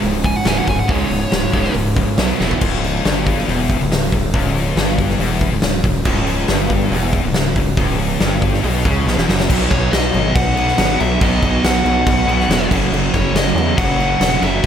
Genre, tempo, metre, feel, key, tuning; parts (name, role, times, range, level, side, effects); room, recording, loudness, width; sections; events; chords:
hard rock; 140 BPM; 4/4; straight; C# minor; A4 = 440 Hz
crunchy overdriven guitar; riff; 0.0-14.7 s; C#2 to B3; -24 LUFS; equal; slapback echo
overdriven semi-hollow guitar; riff; 0.0-2.6, 6.0-14.7 s; C#2 to B3; -23 LUFS; right 8 dB
scooped high-gain guitar; riff; 0.0-14.7 s; C#2 to B3; -23 LUFS; left 8 dB; distortion
gritty driven synth bass; bass; 0.0-14.7 s; C#1 to E2; -20 LUFS; equal
huge arena drum kit; drums; 0.0-14.7 s; crash cymbal, hi-hat, kick drum, snare drum, toms; -18 LUFS; equal
high-gain lead guitar; melody; 0.3-1.7, 9.7-14.6 s; C#5 to G#5; -21 LUFS; equal; distortion
light reverb, small room ambience; -14 LUFS; side -9 dB against mid
0.0-2.6 A section; 2.6-9.5 B section; 9.5-14.7 C section
lead electric guitar solo 0.0-2.6; drum fill 2.4, 9.1-9.5
0.0 C#5; 2.2 B5; 2.4 E5; 2.6 C#m; 9.5 B; 12.7 F#5